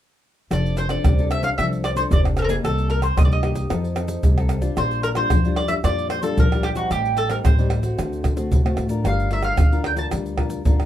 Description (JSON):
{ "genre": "samba and choro", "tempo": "112 BPM", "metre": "4/4", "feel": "straight", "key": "F major", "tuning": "A4 = 440 Hz", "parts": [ { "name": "mandolin", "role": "melody", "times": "0.5-10.1 s", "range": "Gb4 to A5", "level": "-24 LUFS", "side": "equal", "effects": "none" }, { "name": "nylon-string guitar", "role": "accompaniment", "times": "0.5-10.9 s", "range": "G2 to Bb4", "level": "-26 LUFS", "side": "left 4 dB", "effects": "none" }, { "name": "upright bass", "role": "bass", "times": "0.5-10.9 s", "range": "F1 to D3", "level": "-24 LUFS", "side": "equal", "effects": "none" }, { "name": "egg shaker, surdo, pandeiro and tamborim", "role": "percussion", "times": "0.5-10.9 s", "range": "none", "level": "-20 LUFS", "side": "equal", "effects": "none" } ], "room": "moderate small room reverb, RT60 0.5 s", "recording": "minimal, uncompressed stereo recording", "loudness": "-18 LUFS", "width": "side -12 dB against mid", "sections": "0.5-10.9 A section", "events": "none", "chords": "0.5 F6; 2.6 Cm7; 3.7 F7; 4.8 Bb6; 6.9 Am7b5; 8.0 D7; 9.1 Gm7" }